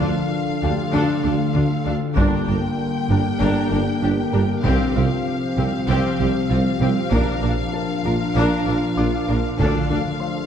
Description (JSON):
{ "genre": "cinematic, hybrid orchestral and electronic film score", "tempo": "97 BPM", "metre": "4/4", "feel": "straight", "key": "D minor", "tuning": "A4 = 440 Hz", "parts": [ { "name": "rich symphonic violin section", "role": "melody", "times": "0.0-10.5 s", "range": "F5 to G5", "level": "-30 LUFS", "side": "left 4 dB", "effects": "none" }, { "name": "clear symphonic violin section", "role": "second line", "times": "0.0-10.0 s", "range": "F4 to Bb4", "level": "-32 LUFS", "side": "left 2 dB", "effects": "none" }, { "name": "rich symphonic viola section", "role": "accompaniment", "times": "0.0-10.0 s", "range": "C4 to D4", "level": "-28 LUFS", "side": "equal", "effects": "none" }, { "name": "mellow French horn section", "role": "sustained chords", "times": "0.0-10.5 s", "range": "F3 to D4", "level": "-26 LUFS", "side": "left 3 dB", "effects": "none" }, { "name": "warbly tape-like pad", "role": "sustained chords", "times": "0.0-10.5 s", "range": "D3 to C5", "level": "-27 LUFS", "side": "left 2 dB", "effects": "chorus, built-in reverb" }, { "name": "harp-like synth pluck", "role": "arpeggios", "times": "0.0-10.1 s", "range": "C3 to Bb4", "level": "-28 LUFS", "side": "right 2 dB", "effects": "none" }, { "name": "rich symphonic cello section", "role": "bass", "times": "0.0-10.0 s", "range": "G2 to D3", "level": "-27 LUFS", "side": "right 2 dB", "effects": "none" }, { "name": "rich symphonic double bass section", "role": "bass", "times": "0.0-10.0 s", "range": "G1 to D2", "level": "-26 LUFS", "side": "right 2 dB", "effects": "none" }, { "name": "warm tuba", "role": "bass", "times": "0.0-10.0 s", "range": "G1 to D2", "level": "-27 LUFS", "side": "right 2 dB", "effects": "none" }, { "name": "warm grand piano", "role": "texture", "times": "0.0-10.5 s", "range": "F4 to D6", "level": "-38 LUFS", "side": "left 2 dB", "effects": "none" }, { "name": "taiko ensemble", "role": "drums", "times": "2.2-10.2 s", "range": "none", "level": "-25 LUFS", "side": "equal", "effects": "none" } ], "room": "wet scoring stage reverb, RT60 1.5 s", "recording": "dark, warm production", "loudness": "-18 LUFS", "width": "side -8 dB against mid", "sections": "0.0-10.5 A section", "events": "none", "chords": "0.0 Dm; 2.2 Gm; 4.6 Csus4; 7.1 Bb; 9.6 Dm" }